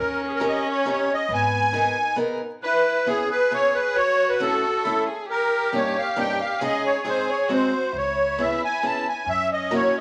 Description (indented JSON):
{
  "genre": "musette",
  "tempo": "136 BPM",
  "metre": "3/4",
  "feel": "straight",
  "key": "C# minor",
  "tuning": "A4 = 440 Hz",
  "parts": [
    { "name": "musette accordion", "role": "melody", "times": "0.0-10.0 s", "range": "G#4 to A5", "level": "-24 LUFS", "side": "equal", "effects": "none" },
    { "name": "warm violin", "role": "second line", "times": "0.0-10.0 s", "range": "B3 to G#4", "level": "-31 LUFS", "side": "equal", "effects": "none" },
    { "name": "upright bass", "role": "bass", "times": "0.0-1.9, 7.9-9.8 s", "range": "G#1 to F#2", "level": "-36 LUFS", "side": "equal", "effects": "none" },
    { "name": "picked steel-string acoustic guitar", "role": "accompaniment", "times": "0.4-9.9 s", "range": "G2 to A#4", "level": "-30 LUFS", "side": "equal", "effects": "none" }
  ],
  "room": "wet large studio reverb, RT60 1.1 s",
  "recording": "vinyl crackle",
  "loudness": "-23 LUFS",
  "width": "mono",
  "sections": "0.0-2.6 A section; 2.6-10.0 B section",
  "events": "none",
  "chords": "0.0 D#7; 1.3 G#madd9; 2.6 C#m7; 4.0 A; 5.3 D#7/G; 6.6 G#sus4; 7.0 G#; 7.9 C#m7; 9.3 F#7"
}